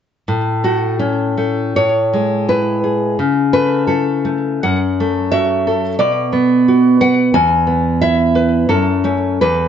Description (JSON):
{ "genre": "romantic piece for solo classical guitar", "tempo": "74-91 BPM", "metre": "2/4", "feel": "rubato", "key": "A major", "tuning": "A4 = 445 Hz", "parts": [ { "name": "nylon-string guitar", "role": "solo", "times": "0.3-9.7 s", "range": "E2 to G#5", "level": "-13 LUFS", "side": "equal", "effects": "slapback echo" } ], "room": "moderate studio reverb, RT60 0.7 s", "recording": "nothing above 7.9 kHz", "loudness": "-13 LUFS", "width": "side -8 dB against mid", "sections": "0.3-9.7 A section", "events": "none", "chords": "0.3 A; 1.8 E/A; 3.2 A/C#; 4.6 F#m; 6.0 Bm; 7.3 E; 8.7 F#m", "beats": "| 0.28 0.99 | 1.76 2.48 | 3.18 3.87 | 4.63 5.31 | 5.99 6.66 | 7.34 8.02 | 8.71 9.42" }